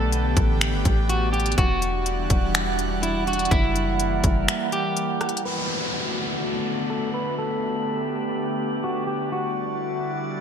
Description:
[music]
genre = hip hop, atmospheric cloud-rap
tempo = 124 BPM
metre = 4/4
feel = half-time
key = B minor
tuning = A4 = 440 Hz
[part]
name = electric guitar at the edge of break-up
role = melody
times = 0.0-10.2 s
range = E4 to B4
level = -28 LUFS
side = left 1 dB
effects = low-pass filter, digital delay
[part]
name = airy breathy pad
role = sustained chords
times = 0.0-10.4 s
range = D3 to F#5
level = -27 LUFS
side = right 1 dB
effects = chorus, sidechain pumping, low-pass filter
[part]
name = warm 808-style bass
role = bass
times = 0.0-4.5 s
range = E1 to B1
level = -25 LUFS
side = equal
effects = none
[part]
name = drifting glass-harmonics texture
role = texture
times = 0.0-10.4 s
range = G3 to F#5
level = -32 LUFS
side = left 1 dB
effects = chorus, built-in reverb
[part]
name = trap drum kit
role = drums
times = 0.1-5.4 s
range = finger snaps, hi-hat, kick drum, rim click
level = -23 LUFS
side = equal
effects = gated reverb
[part]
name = downlifter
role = sound effects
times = 5.5-9.3 s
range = none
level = -30 LUFS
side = equal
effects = none
[sound]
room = light reverb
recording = bright 1980s-style digital production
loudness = -21 LUFS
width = side -7 dB against mid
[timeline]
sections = 0.0-5.4 A section; 5.4-10.4 B section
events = break 4.5-5.4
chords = 0.0 A9sus4; 1.6 Em9; 3.5 F#7b9; 5.4 Bm7; 7.4 A9sus4; 9.3 Em9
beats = 0.13 0.61 1.09 | 1.58 2.06 2.55 3.03 | 3.51 4.00 4.48 4.96 | 5.45 5.93 6.42 6.90 | 7.38 7.87 8.35 8.84 | 9.32 9.80 10.29

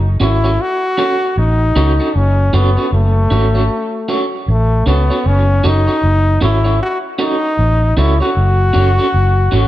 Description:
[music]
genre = dub reggae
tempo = 77 BPM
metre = 4/4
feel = swing 61% on 16ths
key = F# dorian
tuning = A4 = 444 Hz
[part]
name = vintage muted fingered electric bass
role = bass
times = 0.0-9.7 s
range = F#1 to C#2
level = -13 LUFS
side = equal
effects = none
[part]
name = bright trombone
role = melody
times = 0.2-9.7 s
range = A3 to F#4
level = -17 LUFS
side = left 2 dB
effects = dub echo
[part]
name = electric guitar at the edge of break-up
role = accompaniment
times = 0.2-9.7 s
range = C#4 to C#5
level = -19 LUFS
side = right 3 dB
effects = tremolo, dub echo
[sound]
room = moderate echo chamber reverb, RT60 1.7 s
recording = dark, warm production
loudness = -11 LUFS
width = side -14 dB against mid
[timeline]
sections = 0.0-9.7 A section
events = none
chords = 0.0 F#m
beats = 0.59 1.36 | 2.14 2.92 3.69 4.47 | 5.25 6.02 6.80 7.58 | 8.36 9.13

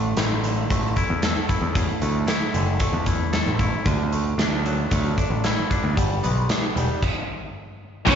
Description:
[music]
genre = quiet-loud alternative rock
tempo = 114 BPM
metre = 4/4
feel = straight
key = unclear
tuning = A4 = 440 Hz
[part]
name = twangy electric guitar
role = arpeggios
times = 0.0-7.0 s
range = A2 to A4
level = -27 LUFS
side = left 1 dB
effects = slapback echo
[part]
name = growling picked electric bass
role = bass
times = 0.0-8.2 s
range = E1 to E2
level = -23 LUFS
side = equal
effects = overdrive
[part]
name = big rock drum kit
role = drums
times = 0.2-8.2 s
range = crash cymbal, hi-hat, kick drum, snare drum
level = -24 LUFS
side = equal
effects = none
[part]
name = high-gain lead guitar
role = melody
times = 8.1-8.2 s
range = C#4 to C#5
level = -18 LUFS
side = left 1 dB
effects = distortion
[part]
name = crunchy overdriven guitar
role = riff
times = 8.1-8.2 s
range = A2 to A3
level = -25 LUFS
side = right 1 dB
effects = none
[part]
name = overdriven electric guitar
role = riff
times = 8.1-8.2 s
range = A2 to E4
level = -23 LUFS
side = right 14 dB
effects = spring reverb
[part]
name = tight distorted guitar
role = riff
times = 8.1-8.2 s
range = A2 to E4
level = -23 LUFS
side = left 14 dB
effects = distortion
[sound]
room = light reverb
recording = live gig heard through the venue's PA, club reverb, nothing above 7.7 kHz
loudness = -20 LUFS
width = side -8 dB against mid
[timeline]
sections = 0.0-8.1 A section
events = stop 7.0-8.1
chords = 0.0 Asus4; 3.9 Dadd9; 6.0 G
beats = 0.18 0.71 1.24 | 1.76 2.29 2.81 3.34 | 3.87 4.39 4.92 5.44 | 5.97 6.49 7.01 7.54 | 8.06

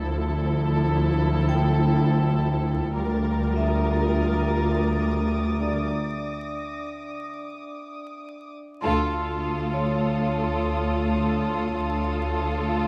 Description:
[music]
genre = cinematic, suspense film score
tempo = 102 BPM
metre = 5/4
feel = straight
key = D harmonic minor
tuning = A4 = 440 Hz
[part]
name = muted studio violin section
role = melody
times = 0.0-12.9 s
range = A4 to Bb4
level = -34 LUFS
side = equal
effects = none
[part]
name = muted symphonic viola section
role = accompaniment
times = 0.0-12.9 s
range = F3 to F4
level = -32 LUFS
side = equal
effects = none
[part]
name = muted studio cello section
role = bass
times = 0.0-12.9 s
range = D2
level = -30 LUFS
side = equal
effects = none
[part]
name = muted symphonic double bass section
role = bass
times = 0.0-12.9 s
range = D2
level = -29 LUFS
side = equal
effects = none
[part]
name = vibraphone with hard mallets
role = texture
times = 1.5-12.9 s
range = D4 to G5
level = -37 LUFS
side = equal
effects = none
[part]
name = muted symphonic violin section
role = texture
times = 3.0-12.9 s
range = A5 to A6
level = -39 LUFS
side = equal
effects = none
[part]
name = muted symphonic violin section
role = second line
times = 8.8-12.9 s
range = F4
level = -31 LUFS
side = equal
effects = none
[sound]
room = moderate scoring stage reverb, RT60 2.0 s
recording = dark, warm production, vinyl crackle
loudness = -24 LUFS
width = mono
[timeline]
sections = 0.0-8.8 A section; 8.8-12.9 B section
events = break 5.9-8.8; band accent 8.8-9.4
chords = 0.0 Dmadd9; 3.0 Gm7/D; 8.8 Dm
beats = | 0.02 0.60 1.19 1.78 2.37 | 2.96 3.55 4.13 4.72 5.31 | 5.90 6.49 7.08 7.66 8.25 | 8.84 9.43 10.02 10.61 11.19 | 11.78 12.37

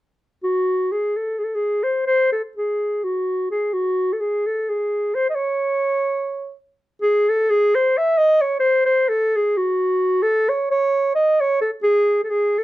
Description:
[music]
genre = balkan folk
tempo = free time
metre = none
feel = none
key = G# phrygian dominant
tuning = A4 = 440 Hz
[part]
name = mellow clarinet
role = solo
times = 0.4-12.6 s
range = F#4 to E5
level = -17 LUFS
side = equal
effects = none
[sound]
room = light reverb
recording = none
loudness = -17 LUFS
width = side -16 dB against mid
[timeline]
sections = 0.5-7.0 A section; 7.0-12.6 B section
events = none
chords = none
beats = free time

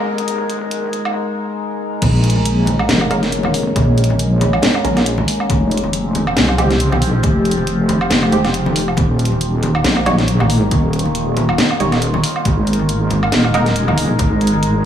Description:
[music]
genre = deep dubstep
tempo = 138 BPM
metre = 4/4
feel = swing 56% on 16ths, half-time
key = Bb dorian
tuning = A4 = 441 Hz
[part]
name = overtone-sweeping drone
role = sustained chords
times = 0.0-14.9 s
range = Eb3 to Bb4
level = -20 LUFS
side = left 1 dB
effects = chorus, built-in reverb, vintage 12-bit sampler grit
[part]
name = deep soft wobble bass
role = bass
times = 0.0-14.9 s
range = Eb1 to C2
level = -17 LUFS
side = equal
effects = chorus, high-pass filter
[part]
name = garage drum kit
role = drums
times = 0.2-14.7 s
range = crash cymbal, hi-hat, snare drum, woodblock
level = -20 LUFS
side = right 1 dB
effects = small room ambience
[part]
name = electronic kick drum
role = drums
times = 2.0-14.3 s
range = none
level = -19 LUFS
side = equal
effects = small room ambience
[part]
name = congas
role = percussion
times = 2.0-14.6 s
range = none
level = -23 LUFS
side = left 2 dB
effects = dub echo
[part]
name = filtered dub chord stab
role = stabs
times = 3.1-13.7 s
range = F3 to Db5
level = -25 LUFS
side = right 2 dB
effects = chorus, dub echo
[sound]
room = light reverb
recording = small room reverb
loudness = -13 LUFS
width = side -10 dB against mid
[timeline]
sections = 0.0-2.0 A section; 2.0-14.9 B section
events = build-up 0.0-2.0; filter sweep on synth stab 0.0-2.0; break 1.1-2.0; drop 2.0-14.9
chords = 0.0 Absus2; 2.0 Bbm7; 5.5 Fmadd9; 9.0 Eb7; 12.5 Absus2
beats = | 0.28 0.72 1.15 1.58 | 2.02 2.46 2.89 3.32 | 3.76 4.19 4.63 5.06 | 5.50 5.93 6.37 6.80 | 7.24 7.67 8.11 8.54 | 8.98 9.41 9.85 10.28 | 10.72 11.15 11.59 12.02 | 12.46 12.89 13.32 13.76 | 14.19 14.63

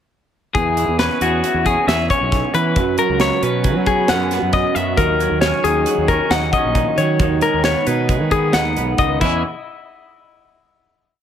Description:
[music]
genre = math rock and midwest emo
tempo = 135 BPM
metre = 5/4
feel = straight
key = E lydian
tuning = A4 = 439 Hz
[part]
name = clean electric guitar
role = arpeggios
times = 0.5-9.4 s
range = E4 to F#5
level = -18 LUFS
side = left 6 dB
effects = spring reverb
[part]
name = fuzz fingered electric bass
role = bass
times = 0.5-9.4 s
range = A#1 to F#3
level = -21 LUFS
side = equal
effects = overdrive
[part]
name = modern studio drum kit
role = drums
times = 0.5-9.3 s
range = crash cymbal, hi-hat, kick drum, snare drum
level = -22 LUFS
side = equal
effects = none
[part]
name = twelve-string electric guitar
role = accompaniment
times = 0.6-9.4 s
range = E2 to G#4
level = -22 LUFS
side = right 14 dB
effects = none
[sound]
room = light reverb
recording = none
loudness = -15 LUFS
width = side -9 dB against mid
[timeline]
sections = 0.5-9.4 A section; 9.4-11.2 final hit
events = none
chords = 0.5 E69; 2.8 F#7sus4; 5.0 D#m7; 7.2 G#m7/D#; 9.2 E6; 9.4 N.C.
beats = | 0.54 0.99 1.43 1.87 2.31 | 2.76 3.20 3.64 4.08 4.53 | 4.97 5.41 5.86 6.30 6.75 | 7.20 7.64 8.09 8.54 8.99

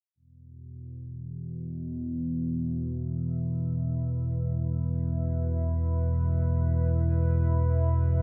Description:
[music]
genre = dark ambient drone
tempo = free time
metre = none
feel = none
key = unclear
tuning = A4 = 440 Hz
[part]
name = deep dark ambient pad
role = sustained chords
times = 2.3-8.2 s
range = E4 to E5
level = -42 LUFS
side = equal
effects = chorus, built-in reverb
[part]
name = analog drone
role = drone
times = 0.6-8.2 s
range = E2 to B2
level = -29 LUFS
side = equal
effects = lush chorus
[sound]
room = wet cathedral reverb, RT60 5.5 s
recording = none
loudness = -28 LUFS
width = mono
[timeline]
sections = 0.1-8.2 A section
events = fade-in on ambient pad 0.1-8.2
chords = 0.1 E5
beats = free time

